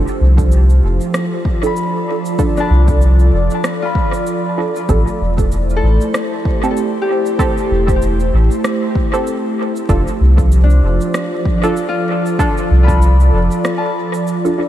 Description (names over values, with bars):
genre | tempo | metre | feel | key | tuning
ambient dub | 96 BPM | 4/4 | swing 57% on 16ths | unclear | A4 = 439 Hz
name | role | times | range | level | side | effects
airy breathy pad | sustained chords | 0.0-14.7 s | F3 to D5 | -19 LUFS | equal | chorus
Celtic harp | arpeggios | 0.0-14.7 s | D4 to B5 | -24 LUFS | left 4 dB | ping-pong delay
filtered dub chord stab | stabs | 0.0-14.7 s | C4 to A4 | -23 LUFS | right 3 dB | lush chorus, dub echo
soft dub sub bass | bass | 0.0-13.5 s | E1 to C2 | -11 LUFS | equal | tube saturation
electronic cabasa and rim click | drums | 0.1-14.6 s | none | -27 LUFS | equal | overdrive, studio reverb, dub echo
electronic kick drum | drums | 0.4-13.0 s | none | -18 LUFS | equal | overdrive, studio reverb
room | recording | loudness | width
light reverb, digital ambience | vinyl crackle | -12 LUFS | side -12 dB against mid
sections
0.0-14.7 A section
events
break 13.6-14.7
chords
0.0 F6; 4.9 Am7; 9.9 F6